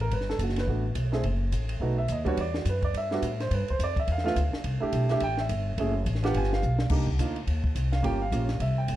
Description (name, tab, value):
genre	jazz, small-group swing and bop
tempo	212 BPM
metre	4/4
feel	swing 61% on 8ths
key	unclear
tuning	A4 = 440 Hz
part	warm grand piano	accompaniment	0.0-9.0 s	G3 to G#5	-30 LUFS	right 2 dB	none
part	upright bass	bass	0.0-9.0 s	F#1 to A2	-27 LUFS	equal	none
part	compact cocktail drum kit	drums	0.0-9.0 s	crash cymbal, hi-hat, kick drum, ride cymbal, snare drum	-34 LUFS	equal	none
room	light reverb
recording	dark, warm production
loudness	-25 LUFS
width	side -14 dB against mid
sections	0.0-6.9 A section; 6.9-9.0 A section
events	drum fill 6.6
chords	0.1 Gmaj9; 1.2 F#m; 1.8 B7; 2.4 Em9; 3.5 G13 (rootless); 4.6 C6; 5.8 F#m7; 6.3 G7; 6.9 Cm9; 8.0 Gm7b5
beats	| 0.11 0.39 0.68 0.96 | 1.24 1.53 1.81 2.10 | 2.38 2.66 2.95 3.23 | 3.51 3.80 4.08 4.36 | 4.64 4.93 5.21 5.49 | 5.78 6.06 6.34 6.62 | 6.91 7.19 7.47 7.75 | 8.04 8.32 8.60 8.88